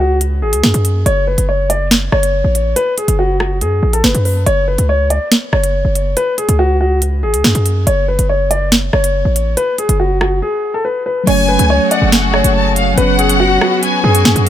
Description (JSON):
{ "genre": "hip hop, drill", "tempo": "141 BPM", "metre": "4/4", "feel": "half-time", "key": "F# minor", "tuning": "A4 = 443 Hz", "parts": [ { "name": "dark baby grand piano", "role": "melody", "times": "0.0-14.5 s", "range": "F#4 to D5", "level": "-16 LUFS", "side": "left 1 dB", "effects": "low-pass filter, ping-pong delay" }, { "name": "hard-hitting 808-style bass", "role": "bass", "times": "0.0-14.5 s", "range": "F#1 to F#2", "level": "-15 LUFS", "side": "equal", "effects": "none" }, { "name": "drill drum kit", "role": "drums", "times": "0.2-14.5 s", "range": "crash cymbal, hi-hat, rim click, snare drum", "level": "-16 LUFS", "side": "right 1 dB", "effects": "none" }, { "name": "mellow tine electric piano", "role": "accompaniment", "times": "11.2-14.5 s", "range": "F#3 to C#5", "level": "-17 LUFS", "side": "right 2 dB", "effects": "medium stereo tremolo, low-pass filter" }, { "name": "warm symphonic violin section", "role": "second line", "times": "11.3-14.5 s", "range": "E#5 to A5", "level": "-17 LUFS", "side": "left 3 dB", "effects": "ping-pong delay" }, { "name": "rich studio string section", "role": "sustained chords", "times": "11.3-14.5 s", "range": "A3 to G#4", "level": "-21 LUFS", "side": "left 3 dB", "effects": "none" } ], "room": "little or no reverb", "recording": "none", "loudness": "-11 LUFS", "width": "side -11 dB against mid", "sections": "0.0-11.3 A section; 11.3-14.5 B section", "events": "break 10.4-11.3", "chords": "0.0 C#sus4; 1.1 F#m; 4.5 F#5; 6.2 C#sus4; 7.9 F#m; 9.6 F#sus4; 11.3 F#madd9; 13.0 C#7sus4/F#" }